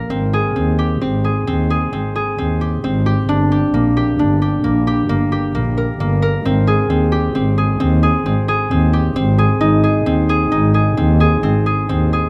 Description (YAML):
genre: contemporary instrumental, chamber music in an uneven meter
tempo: 132 BPM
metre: 7/4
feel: straight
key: Ab lydian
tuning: A4 = 440 Hz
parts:
  - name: concert harp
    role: arpeggios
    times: 0.0-12.3 s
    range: Bb3 to Bb4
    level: -19 LUFS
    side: equal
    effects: none
  - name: dark double bass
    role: bass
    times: 0.0-12.3 s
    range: G1 to Eb2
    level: -19 LUFS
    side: equal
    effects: none
room: light reverb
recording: none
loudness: -16 LUFS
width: mono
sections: 0.0-12.3 A section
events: none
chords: 0.1 Abmaj7; 3.3 Gm; 6.5 Abmaj7; 9.6 Ab